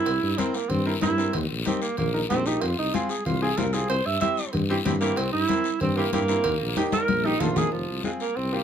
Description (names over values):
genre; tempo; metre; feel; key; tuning
latin, cumbia; 188 BPM; 4/4; straight; F harmonic minor; A4 = 440 Hz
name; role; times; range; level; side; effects
warm alto saxophone; melody; 0.0-8.6 s; F3 to E5; -26 LUFS; right 4 dB; none
bright upright piano; accompaniment; 0.0-8.6 s; Bb3 to Bb4; -29 LUFS; left 1 dB; none
mellow tuba; bass; 0.1-8.6 s; F1 to G2; -28 LUFS; equal; none
congas; percussion; 0.1-8.5 s; none; -30 LUFS; left 5 dB; none
cowbell and timbales; percussion; 0.1-7.6 s; none; -34 LUFS; right 6 dB; none
guiro; percussion; 0.1-8.6 s; none; -36 LUFS; left 8 dB; none
room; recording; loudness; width
light reverb; close, detailed microphones; -22 LUFS; side -8 dB against mid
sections
0.0-7.7 A section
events
alto saxophone solo 0.0-7.7; drum fill 6.8-7.7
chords
0.0 C7; 1.3 Eb; 2.6 Fm; 3.9 C7; 6.5 Eb; 7.7 Fm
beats
| 0.07 0.39 0.71 1.03 | 1.34 1.67 1.98 2.30 | 2.62 2.94 3.26 3.58 | 3.90 4.22 4.54 4.86 | 5.17 5.49 5.81 6.13 | 6.45 6.77 7.09 7.41 | 7.73 8.05 8.37